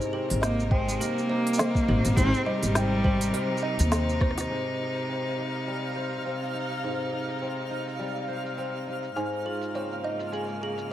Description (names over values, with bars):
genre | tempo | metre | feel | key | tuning
folktronica | 103 BPM | 4/4 | swing 56% on 16ths | Ab major | A4 = 442 Hz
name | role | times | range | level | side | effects
music box | second line | 0.0-4.5, 9.2-10.8 s | G4 to Ab5 | -35 LUFS | right 3 dB | ping-pong delay
clear string quartet | sustained chords | 0.0-10.9 s | Ab2 to Bb4 | -33 LUFS | equal | none
kora | arpeggios | 0.0-10.9 s | Ab2 to C5 | -33 LUFS | left 2 dB | low-pass filter, tape echo
organic electronic drum kit | drums | 0.0-10.9 s | hi-hat, rim click, shaker, snare drum | -32 LUFS | equal | low-pass filter on hats, low-pass filter on perc, low-pass filter on snare
upright bass | bass | 0.3-4.4 s | Ab1 to Eb2 | -27 LUFS | equal | none
rich cello | melody | 0.4-4.2 s | G3 to C4 | -27 LUFS | equal | tape echo
electronic kick drum | drums | 0.7-4.3 s | none | -25 LUFS | equal | none
twinkling granular texture | texture | 5.1-10.9 s | F5 to F6 | -37 LUFS | right 2 dB | built-in reverb
room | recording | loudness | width
light reverb, studio ambience | vinyl crackle | -25 LUFS | side -12 dB against mid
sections
0.0-4.5 A section; 4.5-10.9 B section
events
drum fill 4.2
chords
0.0 Eb6/Ab; 4.5 Abmaj7; 9.2 Bbmadd9/Ab